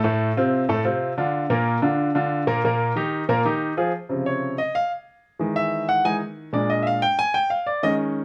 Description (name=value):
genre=latin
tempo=185 BPM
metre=4/4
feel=straight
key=unclear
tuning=A4 = 440 Hz
part: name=clear baby grand piano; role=solo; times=0.0-8.2 s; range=A2 to G#5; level=-23 LUFS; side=equal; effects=none
room=moderate studio reverb, RT60 0.6 s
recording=none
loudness=-23 LUFS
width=mono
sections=0.0-3.9 A section; 3.9-8.2 B section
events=grand piano solo 3.9-8.2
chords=0.0 F/A; 1.3 Bb; 2.6 Eb; 3.9 Dbmaj7; 5.2 Emaj7; 6.5 Bb7